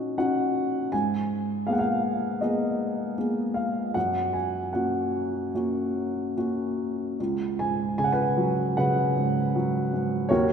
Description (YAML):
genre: classical, lyrical solo piano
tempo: 72-80 BPM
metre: 4/4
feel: rubato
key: F# major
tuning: A4 = 439 Hz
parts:
  - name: dark upright piano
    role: solo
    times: 0.0-10.5 s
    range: Db2 to G#5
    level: -24 LUFS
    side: equal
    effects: none
room: wet church reverb, RT60 2.6 s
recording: recorded in a church or concert hall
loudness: -24 LUFS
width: side -7 dB against mid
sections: 0.0-7.2 A section; 7.2-10.5 B section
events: none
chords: 0.0 D#m7/A#; 0.9 G#madd9; 4.0 F#; 7.2 Db7sus4